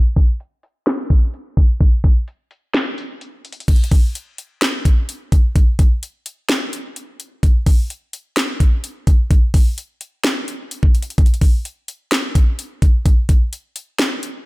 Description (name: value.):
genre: hip hop.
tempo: 128 BPM.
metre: 4/4.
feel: half-time.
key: none.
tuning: none.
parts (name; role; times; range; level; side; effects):
trap drum kit; drums; 0.2-14.3 s; crash cymbal, handclaps, hi-hat, kick drum, snare drum; -14 LUFS; equal; none.
room: little or no reverb.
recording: low-pass filter.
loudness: -15 LUFS.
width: side -22 dB against mid.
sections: 0.0-3.7 A section; 3.7-14.5 B section.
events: filter sweep 0.0-3.7; break 2.7-3.7.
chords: none.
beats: 0.40 0.87 1.34 | 1.81 2.27 2.74 3.21 | 3.68 4.15 4.62 5.09 | 5.56 6.03 6.49 6.96 | 7.43 7.90 8.37 8.84 | 9.31 9.78 10.24 10.71 | 11.18 11.65 12.12 12.59 | 13.06 13.53 13.99.